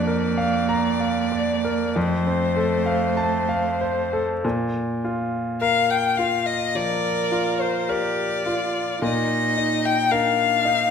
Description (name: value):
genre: classical, slow romantic movement for piano trio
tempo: 46-56 BPM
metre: 4/4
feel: rubato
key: Bb major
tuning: A4 = 439 Hz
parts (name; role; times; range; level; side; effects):
- rich violin; melody; 0.0-10.9 s; C5 to G5; -23 LUFS; left 6 dB; none
- rich cello; second line; 0.0-10.9 s; A3 to Bb4; -27 LUFS; right 10 dB; none
- bright grand piano; accompaniment; 0.0-10.9 s; F2 to Bb5; -23 LUFS; left 1 dB; none
room: wet recital hall reverb, RT60 1.4 s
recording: none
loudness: -20 LUFS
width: side -7 dB against mid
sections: 0.0-4.4 A section; 4.4-10.9 B section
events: none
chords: 0.0 Bb/F; 2.0 F; 4.4 Bb; 9.0 Eb5/Bb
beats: 0.70 1.96 3.17 | 4.44 5.61 6.74 7.88 | 9.02 10.11